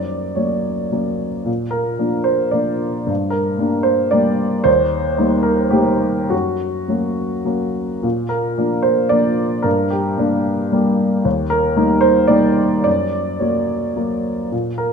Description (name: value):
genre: neoclassical minimalist piano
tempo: 102-116 BPM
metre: 3/4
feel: rubato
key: unclear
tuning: A4 = 440 Hz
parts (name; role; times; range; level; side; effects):
- warm baby grand piano; solo; 0.0-14.9 s; Eb2 to D5; -16 LUFS; equal; none
room: moderate recital hall reverb, RT60 1.4 s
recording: minimal, uncompressed stereo recording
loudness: -16 LUFS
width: side -6 dB against mid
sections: 0.0-8.0 A section; 8.0-14.9 A section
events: none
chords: 0.0 Gb; 1.5 Bb; 3.1 Gm; 4.7 Eb; 6.3 Gb; 8.0 Bb; 9.7 Gm; 11.2 Eb; 12.9 Gb